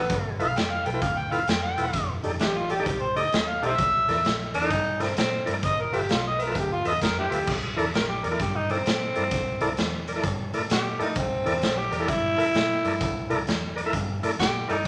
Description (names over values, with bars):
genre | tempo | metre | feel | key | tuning
electric blues shuffle | 130 BPM | 4/4 | swing 65% on 8ths | C mixolydian | A4 = 442 Hz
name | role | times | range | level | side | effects
growling tenor saxophone | second line | 0.0-0.3, 4.5-14.9 s | B3 to Bb4 | -29 LUFS | equal | none
vintage muted fingered electric bass | bass | 0.0-14.9 s | E1 to Bb2 | -36 LUFS | equal | none
raw garage drum kit | drums | 0.1-14.9 s | crash cymbal, hi-hat, kick drum, snare drum | -31 LUFS | equal | none
overdriven harmonica | melody | 0.4-7.5 s | D4 to G5 | -28 LUFS | equal | none
tonewheel organ | accompaniment | 0.4-14.8 s | Eb4 to E5 | -33 LUFS | equal | slow rotary speaker, overdrive
room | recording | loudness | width
moderate large studio reverb, RT60 1.2 s | none | -25 LUFS | mono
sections
0.0-7.5 A section; 7.5-14.9 B section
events
tenor saxophone solo 7.5-14.9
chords
0.1 G13; 1.9 F13; 3.8 C13; 5.6 G13; 7.5 C13